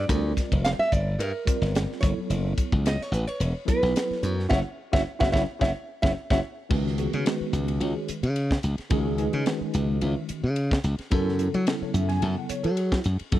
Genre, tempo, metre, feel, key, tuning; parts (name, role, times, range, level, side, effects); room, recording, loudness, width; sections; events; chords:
electric jazz fusion; 109 BPM; 4/4; swing 54% on 16ths; C# minor from 6.7 s; A4 = 442 Hz
nylon-string guitar; melody; 0.0-6.4 s; Bb4 to F#5; -27 LUFS; right 1 dB; slapback echo
glassy slap bass; bass; 0.0-13.4 s; E1 to F#3; -25 LUFS; equal
tine electric piano; accompaniment; 0.1-13.4 s; C#3 to A5; -30 LUFS; right 1 dB; overdrive, fast stereo tremolo, lush chorus
tight funk drum kit; drums; 0.1-13.4 s; crash cymbal, hi-hat, kick drum, ride cymbal, snare drum; -28 LUFS; equal
studio reverb; dry, close 1970s-style studio recording; -23 LUFS; side -14 dB against mid
0.0-6.7 A section; 6.7-13.4 B section
band accent 4.5-6.7; drum fill 5.6-6.7
0.0 Gm7; 2.0 F#m7; 6.7 C#9sus4; 11.1 F#m11